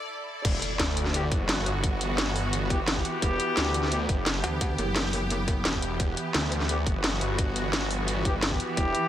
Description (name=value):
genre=dark technical drum and bass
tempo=173 BPM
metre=4/4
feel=straight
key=E minor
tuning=A4 = 440 Hz
part: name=swarming drone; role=sustained chords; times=0.0-9.1 s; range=E3 to D5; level=-32 LUFS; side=right 1 dB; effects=built-in reverb, sidechain pumping
part: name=snarling distorted saw bass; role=bass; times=0.4-8.9 s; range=E1 to D2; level=-29 LUFS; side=equal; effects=distortion, overdrive
part: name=drum and bass drum kit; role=drums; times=0.4-9.0 s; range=crash cymbal, hi-hat, snare drum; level=-29 LUFS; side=equal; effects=none
part: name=electronic kick drum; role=drums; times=0.4-8.8 s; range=none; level=-28 LUFS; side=equal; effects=none
part: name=impact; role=sound effects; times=0.4-1.8 s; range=none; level=-36 LUFS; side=equal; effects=none
part: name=mellow brass ensemble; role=stabs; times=1.1-4.0, 6.7-9.1 s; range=B3 to G4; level=-31 LUFS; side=left 2 dB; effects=dub echo
part: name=metallic wobble bass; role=bass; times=4.4-5.6 s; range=F#1 to D2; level=-29 LUFS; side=equal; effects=chorus
room=light reverb, digital ambience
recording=high-pass filter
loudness=-24 LUFS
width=side -11 dB against mid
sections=0.4-9.1 A section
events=break 0.0-0.4; drop 0.4-9.1; impact 0.4-1.8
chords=0.4 Em